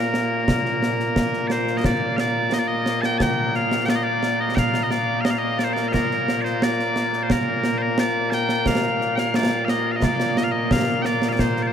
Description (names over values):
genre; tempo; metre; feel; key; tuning
scottish traditional, Scottish pipe music; 88 BPM; 4/4; straight; Bb major; A4 = 438 Hz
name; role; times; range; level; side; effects
loud bright bagpipes; melody; 0.0-11.7 s; Bb2 to A5; -21 LUFS; left 1 dB; none
concert snare drum and concert bass drum; drums; 0.1-11.6 s; none; -23 LUFS; right 1 dB; none
room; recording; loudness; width
wet huge ambient reverb, RT60 8.1 s; in a vast, echoing space; -19 LUFS; side -8 dB against mid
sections
0.0-1.8 A section; 1.8-11.7 B section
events
none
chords
none